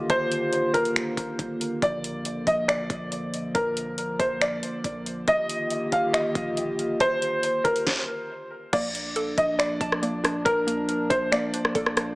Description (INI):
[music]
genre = hip hop, atmospheric cloud-rap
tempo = 139 BPM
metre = 4/4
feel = half-time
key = Bb major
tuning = A4 = 441 Hz
[part]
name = felt-muted upright piano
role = melody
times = 0.0-12.1 s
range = Bb4 to F5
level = -25 LUFS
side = equal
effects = low-pass filter, tape echo
[part]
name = dark analog pad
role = sustained chords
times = 0.0-12.2 s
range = D3 to G4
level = -30 LUFS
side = equal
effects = chorus
[part]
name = warm 808-style bass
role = bass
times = 0.0-12.2 s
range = D1 to Bb1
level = -42 LUFS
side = equal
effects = none
[part]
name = smooth R&B drum kit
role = drums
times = 0.1-12.1 s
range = crash cymbal, finger snaps, hi-hat, kick drum, rim click, snare drum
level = -28 LUFS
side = equal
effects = none
[part]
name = hollow square pluck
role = arpeggios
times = 8.7-12.2 s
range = Bb3 to A5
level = -31 LUFS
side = right 1 dB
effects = chorus, low-pass filter, tape echo
[sound]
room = moderate lush hall reverb, RT60 2.0 s, digital ambience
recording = small speaker sound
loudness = -23 LUFS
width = side -22 dB against mid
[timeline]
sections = 0.0-8.7 A section; 8.7-12.2 B section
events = stop 7.9-8.7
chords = 0.0 Ebmaj7; 1.8 Bb; 5.3 Ebmaj7; 8.7 Bbmaj7